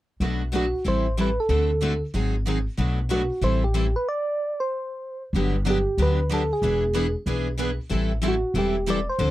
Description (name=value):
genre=acoustic string swing (jazz manouche)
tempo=187 BPM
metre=4/4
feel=swing 60% on 8ths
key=unclear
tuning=A4 = 440 Hz
part: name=picked steel-string acoustic guitar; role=accompaniment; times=0.2-9.3 s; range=B2 to A4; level=-28 LUFS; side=left 5 dB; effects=none
part: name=picked steel-string acoustic guitar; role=accompaniment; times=0.2-9.3 s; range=B2 to B4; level=-31 LUFS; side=right 7 dB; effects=none
part: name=upright bass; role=bass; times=0.2-9.3 s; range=E1 to D2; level=-25 LUFS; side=equal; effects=none
part: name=soft struck synth lead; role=melody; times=0.6-9.3 s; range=F#4 to D5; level=-25 LUFS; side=right 1 dB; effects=chorus
room=little or no reverb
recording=dry, close 1970s-style studio recording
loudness=-22 LUFS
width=side -15 dB against mid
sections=0.2-5.3 A section; 5.3-9.3 B section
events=stop 4.1-5.3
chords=0.2 Bm7; 0.9 Am7; 1.5 D7; 2.1 Ab7; 2.8 Bm7; 3.4 Am7; 4.1 N.C.; 5.3 Gmaj7; 6.6 E7; 7.9 Am7